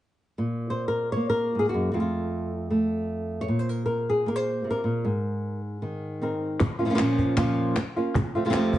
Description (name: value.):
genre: flamenco.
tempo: free time.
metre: none.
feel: none.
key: Bb minor.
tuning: A4 = 440 Hz.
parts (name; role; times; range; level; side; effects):
flamenco guitar; melody; 0.4-8.8 s; F2 to Db5; -24 LUFS; equal; none.
cajon; percussion; 6.6-8.8 s; none; -29 LUFS; right 1 dB; none.
palmas hand claps; percussion; 6.6-8.7 s; none; -36 LUFS; left 4 dB; none.
room: moderate stone room reverb, RT60 1.0 s.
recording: nothing above 10.4 kHz.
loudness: -24 LUFS.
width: side -13 dB against mid.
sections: 0.4-6.6 A section; 6.6-8.8 B section.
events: none.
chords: 0.4 Gb; 1.9 F; 3.5 Bbsus2; 5.0 Abadd9; 6.6 Bbm; 8.2 F.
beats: free time.